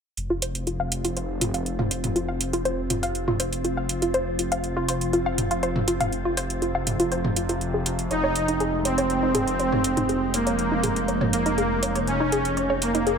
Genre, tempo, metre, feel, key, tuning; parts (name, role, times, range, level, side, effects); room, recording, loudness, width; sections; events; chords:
melodic techno; 121 BPM; 4/4; straight; F minor; A4 = 440 Hz
evolving wavetable pad; sustained chords; 0.6-13.2 s; F3 to F4; -31 LUFS; right 2 dB; chorus, built-in reverb
swelling detuned saw bass; bass; 0.2-13.2 s; F1; -31 LUFS; equal
analog drone; drone; 1.5-13.2 s; F2 to C3; -34 LUFS; equal; chorus
house drum kit; drums; 0.2-13.2 s; hi-hat, toms; -28 LUFS; right 1 dB
analog pluck; arpeggios; 0.3-13.2 s; Eb4 to F5; -27 LUFS; equal; chorus, ping-pong delay
soft supersaw; melody; 8.1-13.2 s; Bb3 to Eb4; -24 LUFS; right 1 dB; digital delay
moderate digital room reverb, RT60 1.1 s, digital ambience; -22 LUFS; side -6 dB against mid
0.2-13.2 A section
0.2 F5; 8.1 Dbadd9/F